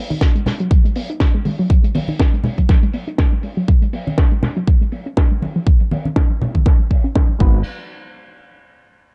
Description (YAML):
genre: nu-disco, nu disco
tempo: 121 BPM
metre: 4/4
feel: swing 56% on 16ths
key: G# dorian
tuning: A4 = 440 Hz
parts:
  - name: soft round pluck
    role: arpeggios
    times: 0.1-7.6 s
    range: E#3 to F#4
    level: -27 LUFS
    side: equal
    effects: chorus, sidechain pumping, tape echo
  - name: congas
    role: percussion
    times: 0.1-6.6 s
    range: none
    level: -24 LUFS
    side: equal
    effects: none
  - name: electronic kick drum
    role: drums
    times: 0.2-7.5 s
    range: none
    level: -16 LUFS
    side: equal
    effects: none
  - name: tight funk drum kit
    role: drums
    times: 0.2-7.5 s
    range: crash cymbal, hi-hat, snare drum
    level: -28 LUFS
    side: equal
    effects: low-pass filter on hats, low-pass filter on cymbals, low-pass filter on snare, low-pass filter on room
  - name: reed electric piano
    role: accompaniment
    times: 7.4-7.6 s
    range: G#3 to B4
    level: -32 LUFS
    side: equal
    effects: phaser, slapback echo
  - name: fat analog bass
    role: bass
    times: 7.4-7.6 s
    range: G#1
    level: -20 LUFS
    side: equal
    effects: none
room: little or no reverb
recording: dark, warm production, nothing above 11.0 kHz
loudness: -17 LUFS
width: mono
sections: 0.0-7.7 A section; 7.7-9.1 B section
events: filter sweep on drum 0.0-7.7; filter sweep on synth arpeggio sound 0.0-7.7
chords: 0.0 G#7(no3); 3.4 C#sus4 (rootless); 5.4 F#maj7(no3); 7.4 G#m7; 7.7 N.C.